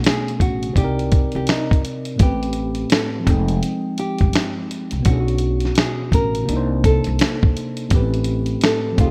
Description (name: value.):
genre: lo-fi hip hop.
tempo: 84 BPM.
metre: 4/4.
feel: swing 63% on 16ths.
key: unclear.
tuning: A4 = 440 Hz.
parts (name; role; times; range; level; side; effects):
tine electric piano; accompaniment; 0.0-9.1 s; A2 to G5; -26 LUFS; equal; none.
dusty soul sampler-style drum kit; drums; 0.0-9.1 s; finger snaps, hi-hat, kick drum, snare drum; -20 LUFS; equal; none.
nylon-string guitar; melody; 0.1-9.1 s; Eb4 to Bb4; -28 LUFS; equal; none.
upright bass; bass; 0.4-9.1 s; F1 to C2; -25 LUFS; equal; none.
room: light reverb.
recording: rough home demo mix.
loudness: -19 LUFS.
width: mono.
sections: 0.0-9.1 A section.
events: none.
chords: 0.0 Bm9; 0.8 Cm9; 2.2 Am9; 3.3 Fm9; 5.1 Bm9; 6.5 Cm9; 7.9 Am9.